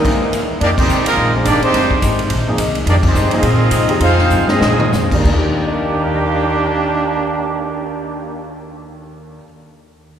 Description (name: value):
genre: jazz, big band swing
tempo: 182-214 BPM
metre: 4/4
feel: swing 60% on 8ths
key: Eb major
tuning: A4 = 440 Hz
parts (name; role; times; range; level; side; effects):
- bright saxophone section; melody; 0.0-0.5 s; Fb3 to Eb4; -23 LUFS; left 1 dB; none
- bright trombone section; second line; 0.0-8.6 s; Ab2 to G4; -20 LUFS; right 2 dB; none
- warm concert grand piano; accompaniment; 0.0-9.6 s; Eb2 to Bb6; -25 LUFS; equal; none
- upright bass; bass; 0.0-9.3 s; F1 to C3; -19 LUFS; equal; none
- swinging big-band drum kit; drums; 0.0-7.8 s; crash cymbal, cymbal swell, hi-hat, kick drum, ride cymbal, snare drum, toms; -21 LUFS; equal; none
- clear trumpet section; melody; 0.6-4.9 s; Ab3 to F5; -18 LUFS; equal; none
- archtop guitar, miked and amplified; accompaniment; 0.6-9.4 s; Bb2 to G4; -25 LUFS; left 4 dB; none
room: wet church reverb, RT60 3.5 s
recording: recorded in a church or concert hall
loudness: -13 LUFS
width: side -9 dB against mid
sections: 0.6-5.2 A section; 5.2-7.9 B section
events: stop 0.0-0.6; band accent 0.8, 3.0; slowing down 2.9-5.2; drum fill 4.3-4.9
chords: 0.0 Emaj7#11/G#; 0.6 Fm9; 1.2 Bb9sus4; 1.7 Fm9; 2.3 Bb9sus4; 2.9 Fm9; 3.4 Bb9sus4; 4.0 Fm9; 4.6 Bb9sus4; 5.2 Ebmaj7